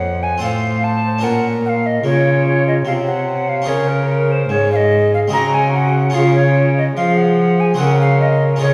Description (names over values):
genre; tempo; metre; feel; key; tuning
classical, baroque-style sonata movement with continuo; 73 BPM; 3/4; rubato; Bb minor, Db major from 3.7 s; A4 = 440 Hz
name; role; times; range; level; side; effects
alto recorder; melody; 0.0-8.7 s; Bb4 to Bb5; -21 LUFS; equal; none
baroque flute; second line; 0.0-8.7 s; F4 to Db5; -22 LUFS; equal; none
harpsichord; accompaniment; 0.0-8.7 s; F2 to C5; -26 LUFS; equal; none
rich cello; bass; 0.0-8.7 s; F2 to F3; -19 LUFS; equal; none
room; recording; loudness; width
wet recital hall reverb, RT60 1.7 s; heard from further back in the room; -15 LUFS; mono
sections
0.0-8.7 A section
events
none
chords
0.4 F/A; 1.2 Bbm; 3.7 Db; 5.3 Ab7/Db; 6.1 Db; 7.8 Ab7/Db